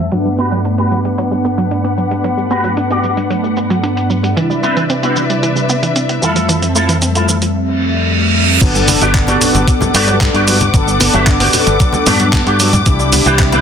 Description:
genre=nu-disco, nu disco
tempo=113 BPM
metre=4/4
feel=straight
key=G major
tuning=A4 = 444 Hz
part: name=mellow synth brass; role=accompaniment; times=0.0-13.6 s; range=F2 to F#5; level=-16 LUFS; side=equal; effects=chorus, sidechain pumping
part: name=dark studio string section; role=sustained chords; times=0.0-13.6 s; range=C3 to D6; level=-20 LUFS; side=left 4 dB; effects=sidechain pumping, low-pass filter
part: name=wide unison pluck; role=arpeggios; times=0.0-13.6 s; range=E3 to D4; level=-20 LUFS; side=right 2 dB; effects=sidechain pumping, tape echo
part: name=dusty soul sampler-style drum kit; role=drums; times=0.1-13.6 s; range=crash cymbal, handclaps, hi-hat, shaker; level=-17 LUFS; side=right 2 dB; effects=small room reverb
part: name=electric guitar with an envelope filter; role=riff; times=0.4-13.6 s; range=C4 to E5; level=-18 LUFS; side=right 1 dB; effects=ensemble chorus, ping-pong delay
part: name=reverse cymbal and impact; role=sound effects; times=7.7-10.7 s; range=none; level=-18 LUFS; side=right 3 dB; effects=none
part: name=fingered electric bass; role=bass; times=8.6-13.6 s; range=G1 to G2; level=-16 LUFS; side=equal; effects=none
part: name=electronic kick drum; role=drums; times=8.6-13.5 s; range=none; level=-14 LUFS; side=equal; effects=small room reverb
part: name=congas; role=percussion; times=8.9-13.6 s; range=none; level=-21 LUFS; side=left 2 dB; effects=none
room=moderate plate reverb, RT60 1.5 s, digital ambience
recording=dense, heavily limited modern master, low-pass filter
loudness=-11 LUFS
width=side -7 dB against mid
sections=0.0-8.6 A section; 8.6-13.6 B section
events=filter sweep on clean electric guitar 0.0-8.6; filter sweep on string section 0.0-8.6; filter sweep on synth arpeggio sound 0.0-8.6; filter sweep 0.0-8.6; reverse cymbal 7.7-8.6; drop 8.6-13.6; impact 8.6-10.7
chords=0.1 Gmaj7; 4.4 Cmaj9; 6.2 Fmaj7; 8.6 Gmaj7; 12.9 Cmaj9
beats=| 0.12 0.65 1.18 1.71 | 2.25 2.78 3.31 3.84 | 4.37 4.90 5.43 5.96 | 6.49 7.02 7.55 8.09 | 8.62 9.15 9.68 10.21 | 10.74 11.27 11.80 12.33 | 12.87 13.39

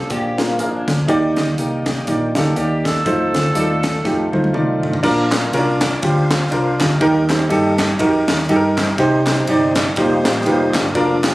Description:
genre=uptempo gospel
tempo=122 BPM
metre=4/4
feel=swing 58% on 8ths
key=Bb major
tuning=A4 = 443 Hz
part: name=breathy tenor saxophone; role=melody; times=0.0-4.5 s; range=D4 to A4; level=-24 LUFS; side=right 1 dB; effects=none
part: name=tonewheel organ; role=sustained chords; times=0.0-11.3 s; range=Eb3 to D5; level=-25 LUFS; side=equal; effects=slow rotary speaker, overdrive, chorus vibrato
part: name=hollow-body short-scale fingered electric bass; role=bass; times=0.0-11.3 s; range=F1 to G2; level=-22 LUFS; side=equal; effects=none
part: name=clear concert grand piano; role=accompaniment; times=0.1-11.3 s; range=Bb2 to D5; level=-17 LUFS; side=equal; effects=none
part: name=crisp fusion drum kit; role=drums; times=0.1-11.3 s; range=crash cymbal, hi-hat, kick drum, ride cymbal, snare drum, toms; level=-22 LUFS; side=equal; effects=none
part: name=group handclap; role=percussion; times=5.3-11.3 s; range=none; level=-25 LUFS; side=equal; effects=none
room=moderate large studio reverb, RT60 1.3 s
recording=recorded on a phone in the room, studio ambience, compression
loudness=-14 LUFS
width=side -18 dB against mid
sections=0.0-5.0 A section; 5.0-11.3 B section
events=drum fill 4.0-5.0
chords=0.1 Bb7; 1.1 Ebmaj7; 3.1 F7; 5.0 Bb; 7.0 Eb; 9.0 Cm; 10.0 F9sus4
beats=0.10 0.59 | 1.08 1.58 2.07 2.56 | 3.06 3.55 4.05 4.54 | 5.04 5.53 6.02 6.52 | 7.01 7.50 8.00 8.49 | 8.98 9.48 9.97 10.46 | 10.96

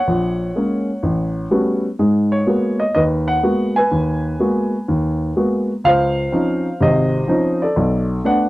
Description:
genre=solo jazz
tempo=124 BPM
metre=4/4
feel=swing 69% on 8ths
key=G# minor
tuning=A4 = 440 Hz
part: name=dark baby grand piano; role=solo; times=0.0-8.5 s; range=G#1 to G#5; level=-15 LUFS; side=equal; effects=none
room=little or no reverb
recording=dry, close 1970s-style studio recording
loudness=-16 LUFS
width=side -18 dB against mid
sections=0.0-5.8 A section; 5.8-8.5 B section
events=none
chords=0.1 F#add9/A#; 1.0 A13; 2.0 G#m9; 5.8 C#maj9; 7.8 Bm7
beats=| 0.06 0.54 1.02 1.50 | 1.98 2.47 2.95 3.43 | 3.91 4.39 4.88 5.36 | 5.84 6.32 6.80 7.28 | 7.76 8.25

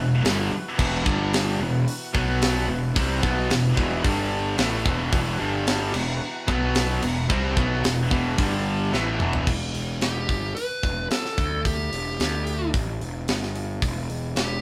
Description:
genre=hard rock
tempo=111 BPM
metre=4/4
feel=straight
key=E minor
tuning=A4 = 443 Hz
part: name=overdriven tonewheel organ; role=sustained chords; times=0.0-9.5 s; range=E3 to B4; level=-39 LUFS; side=equal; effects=none
part: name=cranked stack guitar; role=riff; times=0.0-9.5 s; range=E2 to C4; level=-31 LUFS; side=equal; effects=overdrive
part: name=heavy high-gain guitar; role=riff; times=0.0-9.5 s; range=E2 to C4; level=-30 LUFS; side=equal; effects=distortion
part: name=overdriven semi-hollow guitar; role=riff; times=0.0-9.5 s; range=E2 to C4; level=-34 LUFS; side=equal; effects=spring reverb
part: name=fuzz picked electric bass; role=bass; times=0.0-14.6 s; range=E1 to D2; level=-30 LUFS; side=equal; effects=overdrive
part: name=tight metal drum kit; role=drums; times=0.2-14.5 s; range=crash cymbal, hi-hat, kick drum, snare drum, toms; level=-28 LUFS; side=equal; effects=none
part: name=dark smooth lead guitar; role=melody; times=10.0-14.6 s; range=G4 to B4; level=-31 LUFS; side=equal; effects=overdrive
room=moderate studio reverb, RT60 0.8 s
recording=band playing live in one room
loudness=-24 LUFS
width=mono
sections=0.0-9.5 A section; 9.5-14.6 B section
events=drum fill 8.9-9.5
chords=0.0 Em; 1.1 G5; 1.6 E5; 2.1 B5; 2.7 Em; 4.0 G5; 4.6 E5; 5.4 G5; 5.9 E5; 6.5 B5; 7.0 Em; 8.4 G5; 8.9 E5; 9.5 Em; 11.4 D5; 11.9 Em; 12.2 Dsus4; 12.7 Esus4; 13.3 N.C.; 13.8 Em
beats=0.25 | 0.79 1.33 1.88 2.42 | 2.96 3.50 4.04 4.59 | 5.13 5.67 6.21 6.76 | 7.30 7.84 8.38 8.93 | 9.47 10.02 10.56 11.10 | 11.65 12.19 12.74 13.28 | 13.83 14.37

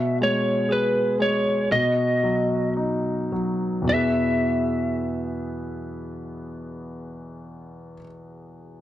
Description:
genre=pop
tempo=52-62 BPM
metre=4/4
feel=straight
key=E major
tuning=A4 = 440 Hz
part: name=lightly driven lead guitar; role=melody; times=0.0-8.0 s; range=B4 to E5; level=-23 LUFS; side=equal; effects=slapback echo
part: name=warm concert grand piano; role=accompaniment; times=0.0-8.8 s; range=E2 to B4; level=-25 LUFS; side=equal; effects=none
room=small room ambience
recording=dry, close 1970s-style studio recording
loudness=-21 LUFS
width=side -13 dB against mid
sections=0.0-3.9 A section; 3.9-8.4 B section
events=slowing down 0.0-3.9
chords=0.0 E6/B (rootless); 1.7 B; 3.9 E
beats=0.70 1.71 2.76 | 3.87 5.02 6.16 7.30

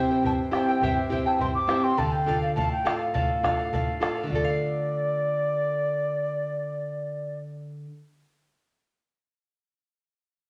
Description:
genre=andean folk, Andean ensemble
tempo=103 BPM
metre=2/4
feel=straight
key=D minor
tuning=A4 = 440 Hz
part: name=baroque flute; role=melody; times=0.0-7.4 s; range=D5 to D6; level=-30 LUFS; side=equal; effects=none
part: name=charango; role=accompaniment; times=0.0-8.1 s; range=E4 to G5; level=-32 LUFS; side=equal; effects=none
part: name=nylon-string guitar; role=accompaniment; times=0.0-8.0 s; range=G2 to A4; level=-32 LUFS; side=equal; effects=none
part: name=bombo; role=percussion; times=0.2-4.6 s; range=none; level=-32 LUFS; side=equal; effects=none
room=wet large studio reverb, RT60 0.8 s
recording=none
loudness=-26 LUFS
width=mono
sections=0.0-4.3 A section; 4.3-6.6 B section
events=none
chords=0.0 C; 2.0 Dm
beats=0.24 | 0.82 1.41 | 1.99 2.57 | 3.15 3.73 | 4.31 4.89 | 5.47 6.05

